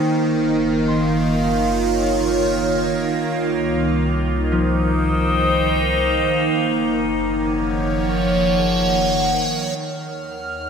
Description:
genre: ambient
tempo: 74 BPM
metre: 4/4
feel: straight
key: unclear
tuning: A4 = 441 Hz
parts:
  - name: evolving wavetable pad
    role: sustained chords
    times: 0.0-10.7 s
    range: F3 to G5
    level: -19 LUFS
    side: equal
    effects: phaser, built-in reverb
  - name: concert harp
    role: arpeggios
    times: 0.0-10.7 s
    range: F3 to C6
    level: -29 LUFS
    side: left 3 dB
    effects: tape echo
  - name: round analog bass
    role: bass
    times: 0.0-10.7 s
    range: Gb1 to Eb2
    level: -26 LUFS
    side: equal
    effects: none
  - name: bowed-like drone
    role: drone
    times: 0.0-9.9 s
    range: Eb3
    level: -24 LUFS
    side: right 1 dB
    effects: built-in reverb
  - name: drifting glass-harmonics texture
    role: texture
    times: 10.0-10.7 s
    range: F6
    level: -31 LUFS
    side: right 4 dB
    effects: chorus, built-in reverb
room: wet lush hall reverb, RT60 2.7 s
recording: none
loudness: -17 LUFS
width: side -6 dB against mid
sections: 0.0-9.8 A section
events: fade-out on harp 0.0-9.8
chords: 0.1 Gbmaj7; 3.3 Cm7; 6.5 Gbmaj7; 9.8 Ebm7

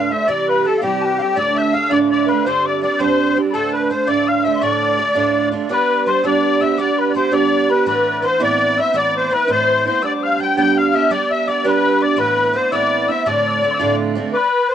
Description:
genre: celtic folk, Celtic jig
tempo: 111 BPM (dotted quarters)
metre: 6/8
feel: straight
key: D dorian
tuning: A4 = 435 Hz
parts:
  - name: musette accordion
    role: melody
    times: 0.0-14.7 s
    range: G4 to G5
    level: -17 LUFS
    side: left 1 dB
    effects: tape echo
  - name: mellow wooden whistle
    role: second line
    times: 0.0-14.7 s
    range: F5 to A6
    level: -22 LUFS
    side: left 11 dB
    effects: cassette tape
  - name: picked steel-string acoustic guitar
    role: accompaniment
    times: 0.0-14.3 s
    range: D2 to G4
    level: -19 LUFS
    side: right 6 dB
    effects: cassette tape
room: wet booth ambience, RT60 0.2 s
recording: home recording on cassette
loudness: -14 LUFS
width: side -9 dB against mid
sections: 0.0-5.7 A section; 5.7-14.3 B section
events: none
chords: 0.3 C; 1.4 Dm; 2.5 Gsus4; 3.5 Dm; 5.7 G; 7.9 Amadd9; 10.0 G; 12.2 Amadd9; 13.3 Dm7

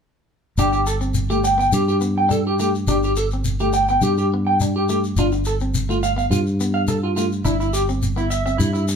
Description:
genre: highlife guitar band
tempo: 105 BPM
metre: 4/4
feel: straight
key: G mixolydian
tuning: A4 = 440 Hz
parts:
  - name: clean electric guitar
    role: accompaniment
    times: 0.6-8.9 s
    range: A3 to D4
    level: -26 LUFS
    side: left 4 dB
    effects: none
  - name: electric guitar at the edge of break-up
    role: arpeggios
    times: 0.6-8.8 s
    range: E4 to G5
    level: -21 LUFS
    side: right 2 dB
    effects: none
  - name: fingered electric bass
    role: bass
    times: 0.6-9.0 s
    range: G1 to G2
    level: -22 LUFS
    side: equal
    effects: none
  - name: shekere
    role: percussion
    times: 0.6-9.0 s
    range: none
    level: -27 LUFS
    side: left 3 dB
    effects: none
room: light reverb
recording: band playing live in one room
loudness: -17 LUFS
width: side -6 dB against mid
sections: 0.6-9.0 A section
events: none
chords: 0.6 Gadd9; 5.2 F/G; 7.5 C/G

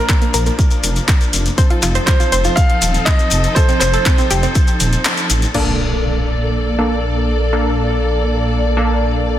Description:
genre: progressive house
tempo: 121 BPM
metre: 4/4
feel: straight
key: Bb major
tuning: A4 = 441 Hz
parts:
  - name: clear grand piano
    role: melody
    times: 0.0-5.3 s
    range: Bb4 to F5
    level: -21 LUFS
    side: right 2 dB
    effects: tape echo
  - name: rich studio string section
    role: sustained chords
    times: 0.0-9.4 s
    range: F3 to D5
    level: -22 LUFS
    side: equal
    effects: sidechain pumping
  - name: analog pluck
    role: arpeggios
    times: 0.0-4.5 s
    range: Bb3 to C5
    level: -22 LUFS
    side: equal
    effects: chorus, sidechain pumping, tape echo
  - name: deep house drum kit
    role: drums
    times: 0.1-5.6 s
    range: crash cymbal, handclaps, hi-hat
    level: -21 LUFS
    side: equal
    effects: none
  - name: electronic kick drum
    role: drums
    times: 0.1-4.7 s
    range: none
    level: -13 LUFS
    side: equal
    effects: none
  - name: shekere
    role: percussion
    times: 0.1-5.5 s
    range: none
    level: -24 LUFS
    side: left 5 dB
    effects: none
  - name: dark detuned saw bass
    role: bass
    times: 0.3-9.4 s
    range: Eb1 to Bb1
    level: -18 LUFS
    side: equal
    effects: sidechain pumping
  - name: supersaw stab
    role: stabs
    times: 5.5-9.4 s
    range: Bb3 to A4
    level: -19 LUFS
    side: equal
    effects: sidechain pumping, low-pass filter, tape echo
  - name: impact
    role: sound effects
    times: 5.5-7.5 s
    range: none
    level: -25 LUFS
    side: equal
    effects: none
room: light reverb, digital ambience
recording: dense, heavily limited modern master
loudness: -13 LUFS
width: side -12 dB against mid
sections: 0.0-5.5 A section; 5.5-9.4 B section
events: filter sweep on synth arpeggio sound 0.0-5.5; kick drops out 5.0-5.5; band accent 5.0; impact 5.5-7.5; filter sweep on supersaw synth 5.5-9.4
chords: 0.0 Bb; 1.6 F7; 5.5 Bbmaj7

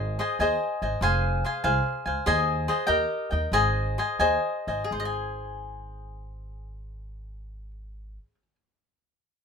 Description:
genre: mexican folk, mariachi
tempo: 83-97 BPM (dotted quarters)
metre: 6/8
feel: rubato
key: Ab major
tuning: A4 = 440 Hz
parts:
  - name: cavaquinho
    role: accompaniment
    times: 0.0-8.6 s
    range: G4 to Ab5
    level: -25 LUFS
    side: left 1 dB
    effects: none
  - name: upright bass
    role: bass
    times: 0.0-8.2 s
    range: F1 to Eb2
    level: -31 LUFS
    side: equal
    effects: none
room: light reverb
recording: minimal, uncompressed stereo recording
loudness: -23 LUFS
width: side -6 dB against mid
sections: 0.0-4.9 A section; 4.9-7.8 B section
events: slowing down 2.3-4.9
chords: 0.0 Ab; 1.0 Fm; 2.3 Ab/Eb; 2.9 Eb; 3.5 Ab

